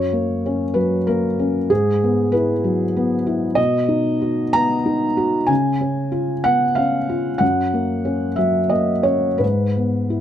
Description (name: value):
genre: neoclassical minimalist piano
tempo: 94 BPM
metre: 3/4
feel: rubato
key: unclear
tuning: A4 = 437 Hz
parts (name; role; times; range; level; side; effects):
- felt-muted upright piano; solo; 0.0-10.2 s; F#2 to A#5; -17 LUFS; equal; none
room: little or no reverb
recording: close, detailed microphones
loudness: -17 LUFS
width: side -10 dB against mid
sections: 0.0-10.2 A section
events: none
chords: 0.0 F#; 1.7 Eadd9/G#; 3.6 B; 5.5 C#7; 7.4 F#; 9.4 E/G#